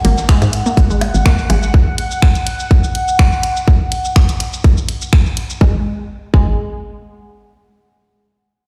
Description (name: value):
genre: minimal techno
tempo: 124 BPM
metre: 4/4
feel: swing 54% on 16ths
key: unclear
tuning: A4 = 440 Hz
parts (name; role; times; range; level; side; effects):
- resonant blip pluck; riff; 0.0-1.6, 5.6-6.6 s; G#3 to A#3; -25 LUFS; equal; phaser, sidechain pumping, tape echo
- hollow knocking FM bass; bass; 0.0-1.7, 5.6-6.6 s; G#1 to G#2; -18 LUFS; equal; tube saturation, sidechain pumping
- electronic tambourine and snare drum; drums; 0.0-1.6 s; none; -34 LUFS; equal; none
- garage drum kit; drums; 0.0-5.6 s; finger snaps, hi-hat, shaker; -25 LUFS; equal; small room ambience
- bubbling stepped-filter texture; texture; 0.0-5.6 s; F#5; -24 LUFS; equal; chorus, built-in reverb, sidechain pumping
- electronic kick drum; drums; 0.3-6.4 s; none; -13 LUFS; equal; small room ambience
- electronic percussion blips and toms; percussion; 0.4-1.6 s; none; -29 LUFS; equal; overdrive, small room ambience, delay
room: light reverb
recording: played on a big sound system in a bare room, stone room reverb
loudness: -14 LUFS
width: mono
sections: 0.0-5.6 A section; 5.6-7.5 B section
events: none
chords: 0.0 F#sus2/G#; 5.6 N.C.